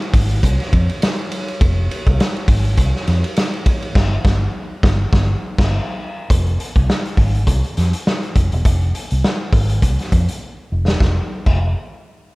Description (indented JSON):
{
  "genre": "funk",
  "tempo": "102 BPM",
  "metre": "4/4",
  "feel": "swing 56% on 16ths",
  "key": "F minor",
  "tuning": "A4 = 439 Hz",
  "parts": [
    { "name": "raw garage drum kit", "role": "drums", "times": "0.0-11.6 s", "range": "crash cymbal, hi-hat, kick drum, ride cymbal, snare drum", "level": "-17 LUFS", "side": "equal", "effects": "none" },
    { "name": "vintage muted fingered electric bass", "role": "bass", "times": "0.1-11.7 s", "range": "E1 to F2", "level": "-17 LUFS", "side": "equal", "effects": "tube saturation" }
  ],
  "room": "little or no reverb",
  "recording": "none",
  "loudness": "-15 LUFS",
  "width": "side -24 dB against mid",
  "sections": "0.0-6.3 A section; 6.3-11.0 B section; 11.0-12.3 C section",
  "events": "band accent 4.0-6.3; drum fill 10.4-11.0",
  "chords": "none"
}